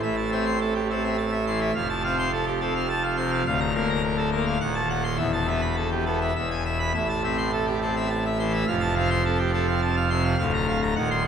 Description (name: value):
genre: classical, organ toccata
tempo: 105 BPM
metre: 3/4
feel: straight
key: A minor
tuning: A4 = 438 Hz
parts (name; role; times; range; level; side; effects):
- pipe organ, full organ; solo; 0.0-11.3 s; D1 to C6; -22 LUFS; equal; none
room: wet church reverb, RT60 3.4 s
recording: none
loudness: -22 LUFS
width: side -8 dB against mid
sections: 0.0-11.3 A section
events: none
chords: 0.0 Am; 1.7 F; 3.5 Bb/D; 4.6 D#dim7; 5.2 Esus4; 6.4 E; 6.9 Am; 8.7 F; 10.4 Bb/D